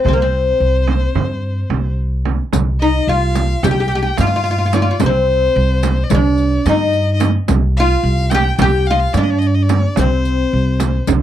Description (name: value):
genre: Turkish makam ensemble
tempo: 218 BPM (eighths)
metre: 9/8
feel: straight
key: C makam ussak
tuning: A4 = 437 Hz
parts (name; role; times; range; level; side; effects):
- oud; melody; 0.0-11.0 s; Bb3 to G4; -17 LUFS; left 1 dB; none
- clear violin; second line; 0.0-11.1 s; C5 to G5; -25 LUFS; left 3 dB; none
- upright bass; bass; 0.0-11.2 s; C2 to G2; -16 LUFS; equal; none
- frame drum; percussion; 0.1-11.2 s; none; -20 LUFS; right 9 dB; none
- riq; percussion; 2.5-11.2 s; none; -24 LUFS; left 10 dB; none
room: little or no reverb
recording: dry, close 1970s-style studio recording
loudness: -13 LUFS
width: side -11 dB against mid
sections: 0.0-2.5 A section; 2.5-11.2 B section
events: none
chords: none